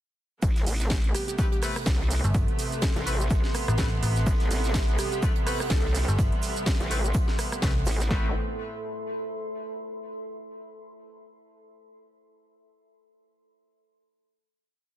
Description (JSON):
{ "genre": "bass house", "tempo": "125 BPM", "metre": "4/4", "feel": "swing 56% on 16ths", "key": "A minor", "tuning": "A4 = 439 Hz", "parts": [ { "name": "bright studio string section", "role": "sustained chords", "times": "0.4-8.3 s", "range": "A2 to C4", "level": "-35 LUFS", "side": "right 2 dB", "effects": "sidechain pumping" }, { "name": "vowel-sweep wobble bass", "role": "bass", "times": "0.4-8.3 s", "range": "A1 to C2", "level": "-27 LUFS", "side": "equal", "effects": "chorus, tube saturation, sidechain pumping" }, { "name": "big-room dance drum kit", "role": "drums", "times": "0.4-8.2 s", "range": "kick drum, snare drum", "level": "-26 LUFS", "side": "equal", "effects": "overdrive" }, { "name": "house drum kit", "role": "drums", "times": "0.4-8.1 s", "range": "hi-hat, rim click, shaker, snare drum", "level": "-33 LUFS", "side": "right 1 dB", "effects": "none" }, { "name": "tight funk drum kit", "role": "drums", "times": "0.4-8.1 s", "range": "hi-hat, shaker, snare drum", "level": "-43 LUFS", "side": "right 4 dB", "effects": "none" }, { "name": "deep dark ambient pad", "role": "texture", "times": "1.7-10.0 s", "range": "A4 to C6", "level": "-36 LUFS", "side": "right 1 dB", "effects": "chorus, built-in reverb, sidechain pumping" }, { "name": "plucky unison lead", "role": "melody", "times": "1.1-1.6, 5.0-6.2 s", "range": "G4 to A4", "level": "-37 LUFS", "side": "right 2 dB", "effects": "digital delay" }, { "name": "warm horn section", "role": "stabs", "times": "1.4-8.3 s", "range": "A3 to B4", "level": "-38 LUFS", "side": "left 4 dB", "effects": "sidechain pumping, digital delay" }, { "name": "metallic FM bass", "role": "bass", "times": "2.2-7.8 s", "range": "G1 to C2", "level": "-25 LUFS", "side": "equal", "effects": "overdrive, sidechain pumping" } ], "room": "small room ambience", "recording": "dense, heavily limited modern master", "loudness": "-24 LUFS", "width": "side -12 dB against mid", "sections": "0.4-8.1 drop; 8.1-10.0 final chord", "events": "drop 0.4-8.1", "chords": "0.4 Amadd9" }